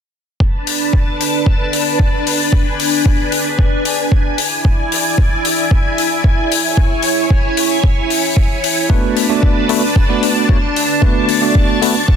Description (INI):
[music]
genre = nu-disco, nu disco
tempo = 113 BPM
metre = 4/4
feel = straight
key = B dorian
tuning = A4 = 440 Hz
[part]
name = string machine, full ensemble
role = sustained chords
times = 0.4-12.2 s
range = D4 to C#6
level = -16 LUFS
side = equal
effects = phaser, ensemble chorus, sidechain pumping
[part]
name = electronic kick drum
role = drums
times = 0.4-12.2 s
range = none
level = -13 LUFS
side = equal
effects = overdrive
[part]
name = hi-hat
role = drums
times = 0.7-11.9 s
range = none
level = -20 LUFS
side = left 7 dB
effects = none
[part]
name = bell-like tine electric piano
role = accompaniment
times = 8.9-11.9 s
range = A3 to D5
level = -16 LUFS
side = equal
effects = medium stereo tremolo, sidechain pumping, ping-pong delay
[sound]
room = light reverb, small room ambience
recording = dense, heavily limited modern master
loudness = -12 LUFS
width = side -8 dB against mid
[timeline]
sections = 0.4-12.2 A section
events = none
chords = 0.4 Bm7; 4.4 E7; 8.9 Bm7